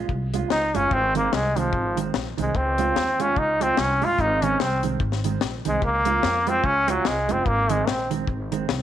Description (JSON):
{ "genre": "ska", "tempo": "146 BPM", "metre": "4/4", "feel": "swing 60% on 8ths", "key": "Ab mixolydian", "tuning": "A4 = 440 Hz", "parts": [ { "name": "mellow electric guitar", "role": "accompaniment", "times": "0.0-8.7 s", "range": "Eb3 to F4", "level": "-29 LUFS", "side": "right 8 dB", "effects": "spring reverb" }, { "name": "upright bass", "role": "bass", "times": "0.0-8.8 s", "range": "Gb1 to F2", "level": "-28 LUFS", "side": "equal", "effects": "none" }, { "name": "deep reggae drum kit", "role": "drums", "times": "0.1-8.8 s", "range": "hi-hat, kick drum, snare drum", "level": "-28 LUFS", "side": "left 5 dB", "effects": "none" }, { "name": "brilliant trombone", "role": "melody", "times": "0.5-8.1 s", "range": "F3 to F4", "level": "-22 LUFS", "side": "equal", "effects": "none" } ], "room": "moderate echo chamber reverb, RT60 1.4 s, small room reverb", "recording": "1960s-style stereo", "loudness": "-20 LUFS", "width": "side -11 dB against mid", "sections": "0.0-8.8 A section", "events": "trombone solo 0.0-8.8", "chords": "0.0 Db; 0.9 Ab; 2.5 Db; 4.2 Ab; 5.8 Db; 7.5 Ab" }